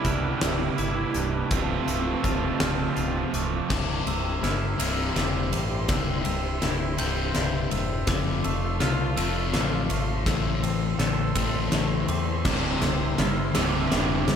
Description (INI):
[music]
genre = post-rock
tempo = 55 BPM (dotted quarters)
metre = 6/8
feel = straight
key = C major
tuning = A4 = 440 Hz
[part]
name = lightly driven lead guitar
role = melody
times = 0.0-3.3 s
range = C4 to E4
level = -34 LUFS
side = left 1 dB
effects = tape echo
[part]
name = muted studio string section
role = sustained chords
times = 0.0-14.4 s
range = E4 to C6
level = -36 LUFS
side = equal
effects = none
[part]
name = glockenspiel with soft plastic mallets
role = arpeggios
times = 0.0-14.4 s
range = D6 to G6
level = -36 LUFS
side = right 4 dB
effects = slapback echo, tape echo
[part]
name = twangy electric guitar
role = arpeggios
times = 0.0-14.4 s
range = C2 to A4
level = -34 LUFS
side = left 1 dB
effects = slapback echo, tape echo
[part]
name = distorted electric guitar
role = riff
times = 0.0-3.7, 12.5-14.4 s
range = C2 to F4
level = -29 LUFS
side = right 8 dB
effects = distortion, slapback echo
[part]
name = huge arena drum kit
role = drums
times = 0.0-14.4 s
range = crash cymbal, hi-hat, kick drum, ride cymbal, snare drum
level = -27 LUFS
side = equal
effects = none
[part]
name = growling fingered electric bass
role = bass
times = 0.1-14.4 s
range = C1 to E2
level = -30 LUFS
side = equal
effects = overdrive
[part]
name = sludgy distorted guitar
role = riff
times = 3.7-14.4 s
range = C2 to A3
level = -30 LUFS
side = left 8 dB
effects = overdrive
[sound]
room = moderate lush hall reverb, RT60 3.0 s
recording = big arena sound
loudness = -23 LUFS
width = side -8 dB against mid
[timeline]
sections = 0.0-3.7 A section; 3.7-14.4 B section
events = build-up 3.7-14.4; drum fill 3.7-14.4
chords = 0.0 Cmaj7; 1.5 Fmaj7/C; 3.7 C; 8.1 Fmaj7; 10.3 Am; 12.5 C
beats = 0.41 | 1.51 2.61 | 3.70 4.80 | 5.89 6.99 | 8.08 9.18 | 10.27 11.37 | 12.46 13.55